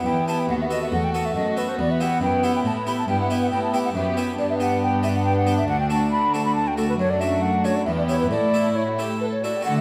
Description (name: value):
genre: classical, baroque-style concerto movement with solo episodes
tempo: 138 BPM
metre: 3/4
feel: straight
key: E minor, D major from 4.4 s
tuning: A4 = 440 Hz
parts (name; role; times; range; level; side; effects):
- concert flute; melody; 0.0-9.8 s; A4 to B5; -27 LUFS; equal; none
- harpsichord; accompaniment; 0.0-9.8 s; D2 to A4; -31 LUFS; equal; none
- warm chamber viola section; accompaniment; 0.0-9.8 s; A3 to B3; -29 LUFS; equal; none
- warm studio violin section; melody; 0.1-9.8 s; E4 to B4; -38 LUFS; equal; none
- rich chamber violin section; second line; 0.1-9.8 s; D4 to G4; -32 LUFS; equal; none
- rich chamber cello section; bass; 0.1-9.8 s; D2 to D3; -30 LUFS; equal; none
room: moderate recital hall reverb, RT60 1.3 s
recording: none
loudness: -22 LUFS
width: mono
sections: 0.0-9.7 A section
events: none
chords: 0.5 B7/D#; 1.8 Em; 3.1 Em/G; 4.4 G; 5.7 D; 7.0 D/F#; 7.9 Em; 8.3 A